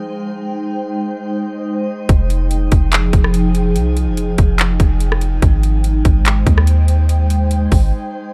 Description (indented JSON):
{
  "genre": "hip hop, atmospheric cloud-rap",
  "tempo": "144 BPM",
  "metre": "4/4",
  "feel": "half-time",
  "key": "Ab major",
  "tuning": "A4 = 438 Hz",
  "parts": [
    { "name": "glassy FM pad", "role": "sustained chords", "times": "0.0-8.3 s", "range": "F3 to G5", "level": "-23 LUFS", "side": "equal", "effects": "ensemble chorus, built-in reverb, phaser, sidechain pumping" },
    { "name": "soft 808-style bass", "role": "bass", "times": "2.1-7.9 s", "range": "F1 to Eb2", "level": "-17 LUFS", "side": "equal", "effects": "none" },
    { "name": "trap drum kit", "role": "drums", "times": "2.1-7.8 s", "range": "handclaps, hi-hat, kick drum, rim click", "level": "-17 LUFS", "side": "equal", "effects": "none" }
  ],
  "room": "little or no reverb",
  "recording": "dark, warm production",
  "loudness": "-15 LUFS",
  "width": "mono",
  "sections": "0.0-8.3 A section",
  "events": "break 7.9-8.3",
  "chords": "0.0 Abmaj7; 2.1 Fm9; 5.4 Abmaj7"
}